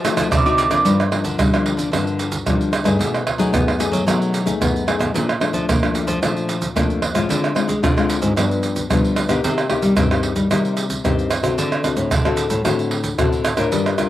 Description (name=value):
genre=samba and choro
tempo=112 BPM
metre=4/4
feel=straight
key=G minor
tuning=A4 = 439 Hz
part: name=nylon-string guitar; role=accompaniment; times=0.0-14.1 s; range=F2 to Bb4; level=-22 LUFS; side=left 5 dB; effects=slapback echo
part: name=nylon-string guitar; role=bass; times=0.0-13.9 s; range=G2 to C4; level=-22 LUFS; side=equal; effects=none
part: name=egg shaker, pandeiro, tamborim, surdo and agogo bells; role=percussion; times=0.0-14.1 s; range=none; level=-20 LUFS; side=right 3 dB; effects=none
room=little or no reverb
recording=recorded outdoors, with no room sound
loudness=-16 LUFS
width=side -13 dB against mid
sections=0.9-14.1 A section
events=none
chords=0.0 F7b9; 0.9 Gm7; 3.0 B6; 5.1 Bbmaj7; 7.3 Dm7b5; 8.4 G7; 9.4 Cm7; 11.6 D7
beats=0.32 | 0.85 1.39 1.93 2.46 | 3.00 3.54 4.07 4.61 | 5.14 5.68 6.22 6.75 | 7.29 7.83 8.36 8.90 | 9.44 9.97 10.51 11.04 | 11.58 12.11 12.65 13.19 | 13.72